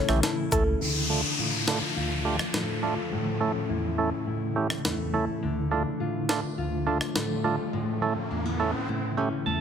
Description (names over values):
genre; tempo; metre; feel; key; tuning
dancehall; 104 BPM; 4/4; straight; D harmonic minor; A4 = 440 Hz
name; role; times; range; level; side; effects
soft round pluck; melody; 0.0-0.6 s; A4; -31 LUFS; left 1 dB; chorus, tape echo
granular cloud pad; sustained chords; 0.0-9.6 s; C#3 to F4; -33 LUFS; equal; built-in reverb, sidechain pumping, low-pass filter
nylon-string guitar; arpeggios; 0.0-9.6 s; A2 to F4; -32 LUFS; left 6 dB; low-pass filter, tape echo
percussive tonewheel organ; accompaniment; 0.1-9.6 s; D2 to A5; -29 LUFS; right 4 dB; overdrive, low-pass filter
saturated sub bass; bass; 0.1-0.8 s; Bb1 to C#2; -27 LUFS; equal; none
jungle sampler-style drum kit; drums; 0.1-7.3 s; hi-hat, kick drum, rim click, snare drum; -30 LUFS; equal; none
woodblock and cabasa; percussion; 0.2-0.7 s; none; -39 LUFS; left 5 dB; none
downlifter and riser; sound effects; 0.8-8.9 s; none; -33 LUFS; left 1 dB; none
room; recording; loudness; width
light reverb, digital ambience; none; -25 LUFS; side -7 dB against mid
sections
0.8-9.6 A section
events
filter sweep 0.8-9.6; riser 6.8-9.6; tonewheel organ fill 9.2-9.6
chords
0.0 A; 0.8 Dm; 3.1 A; 5.4 Dm; 7.7 A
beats
0.23 | 0.81 1.39 1.96 2.54 | 3.12 3.69 4.27 4.85 | 5.42 6.00 6.58 7.16 | 7.73 8.31 8.89 9.46